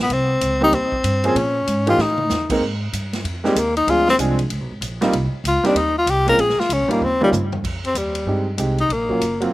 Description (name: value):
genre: jazz, small-group swing and bop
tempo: 191 BPM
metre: 4/4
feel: swing 63% on 8ths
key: unclear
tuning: A4 = 439 Hz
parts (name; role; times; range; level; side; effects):
- breathy tenor saxophone; melody; 0.0-9.4 s; G3 to Bb4; -18 LUFS; left 2 dB; slapback echo
- upright bass; bass; 0.0-9.5 s; Gb1 to Bb2; -24 LUFS; right 1 dB; none
- swinging big-band drum kit; drums; 0.1-9.5 s; crash cymbal, hi-hat, kick drum, ride cymbal, snare drum, toms; -28 LUFS; equal; none
- warm grand piano; accompaniment; 0.6-9.5 s; Fb3 to Bb4; -21 LUFS; right 2 dB; none
room: little or no reverb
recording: none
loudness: -17 LUFS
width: side -17 dB against mid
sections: 0.0-7.6 A section; 7.6-9.5 B section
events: drum fill 2.0-2.3, 7.0-7.6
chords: 0.1 Cm7; 1.4 Bbm7; 2.0 A5; 2.6 Abmaj7(no3); 3.9 Dm7b5; 4.5 Db13; 5.1 Cm7; 6.4 Bbm7; 7.0 Eb7; 7.6 Fm9; 8.9 Gbmaj7#11